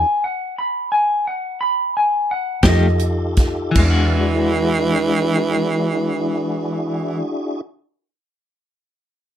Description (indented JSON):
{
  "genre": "slow blues",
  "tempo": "52-60 BPM (dotted quarters)",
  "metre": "12/8",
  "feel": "straight",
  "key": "E mixolydian",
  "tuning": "A4 = 440 Hz",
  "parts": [
    { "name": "clean lap steel guitar", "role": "melody", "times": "0.0-3.0 s", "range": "Eb5 to B5", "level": "-18 LUFS", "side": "left 1 dB", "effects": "none" },
    { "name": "mellow tonewheel organ", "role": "sustained chords", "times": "0.0-7.6 s", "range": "D4 to A5", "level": "-24 LUFS", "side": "left 1 dB", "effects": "chorus vibrato, fast rotary speaker" },
    { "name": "vintage muted fingered electric bass", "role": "bass", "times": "0.0-7.2 s", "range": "E2 to F2", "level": "-19 LUFS", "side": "equal", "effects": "none" },
    { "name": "clean electric guitar", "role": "accompaniment", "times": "2.6-7.4 s", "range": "E3 to G4", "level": "-22 LUFS", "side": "left 4 dB", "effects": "tremolo" },
    { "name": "natural country drum kit", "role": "drums", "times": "2.6-3.9 s", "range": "crash cymbal, hi-hat, kick drum, snare drum", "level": "-19 LUFS", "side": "equal", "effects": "none" },
    { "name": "growling tenor saxophone", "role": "second line", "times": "3.8-7.2 s", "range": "E3", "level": "-20 LUFS", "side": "right 4 dB", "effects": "none" }
  ],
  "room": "light reverb",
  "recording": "dark, warm production",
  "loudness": "-16 LUFS",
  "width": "side -10 dB against mid",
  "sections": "0.0-3.8 A section; 3.8-8.4 B section",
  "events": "slowing down 0.0-3.8; stop 0.0-2.6",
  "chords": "0.0 Eadd9 (rootless); 2.6 F9; 3.8 E9"
}